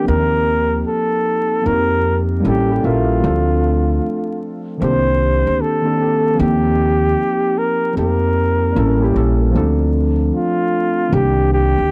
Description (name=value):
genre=lo-fi hip hop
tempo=76 BPM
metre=4/4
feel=swing 65% on 16ths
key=unclear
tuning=A4 = 442 Hz
part: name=breathy flugelhorn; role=melody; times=0.0-11.9 s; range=F4 to C5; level=-21 LUFS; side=equal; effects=low-pass filter
part: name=muted felt-like synth keys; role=accompaniment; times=0.0-11.9 s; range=Eb3 to E5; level=-21 LUFS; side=equal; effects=chorus, low-pass filter
part: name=upright bass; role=bass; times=0.1-11.9 s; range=A1 to F2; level=-20 LUFS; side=equal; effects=transformer saturation
room=light reverb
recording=dry, gritty hardware recording, vinyl crackle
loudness=-17 LUFS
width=mono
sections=0.0-11.9 A section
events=none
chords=0.1 Eb6; 1.6 F9sus4; 2.4 A7b9; 3.2 Dm7; 4.8 Cm7; 6.4 Eb6; 8.0 F9sus4; 8.8 A7b9; 9.5 Dm7; 11.1 Cm7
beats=0.07 0.85 | 1.64 2.43 3.22 4.01 | 4.80 5.59 6.38 7.17 | 7.96 8.75 9.54 10.33 | 11.12 11.91